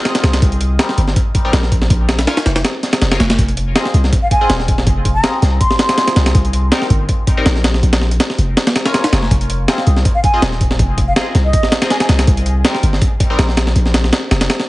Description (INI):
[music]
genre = drum and bass, jungle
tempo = 162 BPM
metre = 4/4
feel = swing 53% on 16ths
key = F minor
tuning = A4 = 440 Hz
[part]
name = band-passed chord stab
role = stabs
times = 0.0-13.4 s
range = G3 to Ab5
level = -24 LUFS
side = left 2 dB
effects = phaser, lush chorus, cassette tape, dub echo
[part]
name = breakbeat sampler-style drum kit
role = drums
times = 0.1-14.7 s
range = hi-hat, kick drum, snare drum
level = -14 LUFS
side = equal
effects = small room ambience
[part]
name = long sustained 808-style bass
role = bass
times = 0.2-14.5 s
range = Eb1 to C2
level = -14 LUFS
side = equal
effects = none
[part]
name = breathy concert flute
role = melody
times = 4.2-6.3, 10.1-12.1 s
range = Eb5 to C6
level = -19 LUFS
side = equal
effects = dub echo
[sound]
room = light reverb, digital ambience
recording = heavily compressed radio sound, multiband compression, vinyl crackle, nothing above 10.3 kHz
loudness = -12 LUFS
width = side -19 dB against mid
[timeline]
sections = 0.0-14.7 A section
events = none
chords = 0.4 Cm7; 1.9 Bb5; 3.4 Fm7; 6.3 Cm7; 7.8 Bbm7; 9.3 Fm7; 12.3 Cm7; 13.8 Bb5